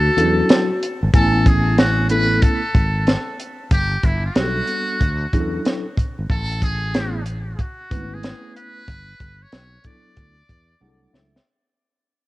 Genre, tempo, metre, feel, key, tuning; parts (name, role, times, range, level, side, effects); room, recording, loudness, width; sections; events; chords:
hip hop, jazz-hop; 93 BPM; 4/4; swing 66% on 16ths; A major; A4 = 441 Hz
trumpet with metal mute; melody; 0.0-11.1 s; E4 to D5; -24 LUFS; equal; cassette tape, tape echo
vibraphone with hard mallets; second line; 0.0-0.8 s; F#4; -23 LUFS; left 1 dB; cassette tape
sustaining fretless electric bass; bass; 0.0-11.4 s; G1 to E2; -21 LUFS; equal
mellow tine electric piano; accompaniment; 0.2-11.4 s; E3 to G#5; -23 LUFS; equal; medium stereo tremolo, cassette tape
compact cocktail drum kit; drums; 0.2-11.5 s; hi-hat, kick drum, snare drum; -18 LUFS; equal
light reverb, small room ambience; home recording on cassette; -16 LUFS; side -18 dB against mid
0.0-1.1 A section; 1.1-11.5 B section
break 0.0-1.1; fade-out 1.1-11.5; tine electric piano fill 10.5-11.5; drum fill 10.8-11.5
0.0 Dmaj9; 1.1 Amaj9; 3.7 Gmaj9; 5.0 Dmaj9; 6.3 Amaj9; 8.9 Gmaj9; 10.2 Dmaj9